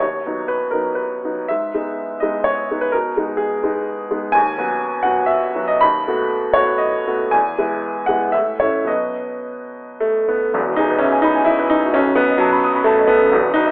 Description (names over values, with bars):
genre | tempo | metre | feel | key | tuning
classical, romantic character piece for solo piano | 103-136 BPM | 3/4 | rubato | unclear | A4 = 440 Hz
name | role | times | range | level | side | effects
clear upright piano | solo | 0.0-13.7 s | E1 to D#6 | -15 LUFS | equal | none
room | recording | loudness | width
moderate recital hall reverb, RT60 1.7 s | telephone sound | -15 LUFS | side -25 dB against mid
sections
0.0-10.6 A section; 10.6-13.7 B section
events
none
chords
0.0 B/D#; 1.5 G#m; 2.9 G#m/B; 4.3 B/D#; 5.8 B7/D#; 7.3 E; 8.3 A; 8.9 B; 10.6 E; 12.0 B7